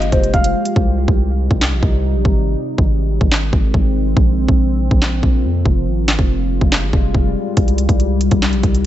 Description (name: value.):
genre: hip hop, trap.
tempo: 141 BPM.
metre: 4/4.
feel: half-time.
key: C minor.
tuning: A4 = 440 Hz.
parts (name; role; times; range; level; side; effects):
felt-muted upright piano; melody; 0.0-0.7 s; Eb5 to F5; -22 LUFS; right 1 dB; tape echo.
deep dark ambient pad; sustained chords; 0.0-8.9 s; C3 to G4; -21 LUFS; left 1 dB; chorus, built-in reverb.
long sustained 808-style bass; bass; 0.0-8.9 s; F1 to F2; -18 LUFS; equal; none.
trap drum kit; drums; 0.0-8.8 s; handclaps, hi-hat, kick drum, snare drum; -15 LUFS; equal; none.
room: digital ambience.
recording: nothing above 8.0 kHz.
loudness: -13 LUFS.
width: side -13 dB against mid.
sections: 0.8-8.9 A section.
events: hi-hats muted 0.8-7.6.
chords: 0.0 Fmadd9; 0.8 Cm; 2.5 Ab; 4.2 Bbsus2; 5.9 Fmadd9; 7.6 Cm.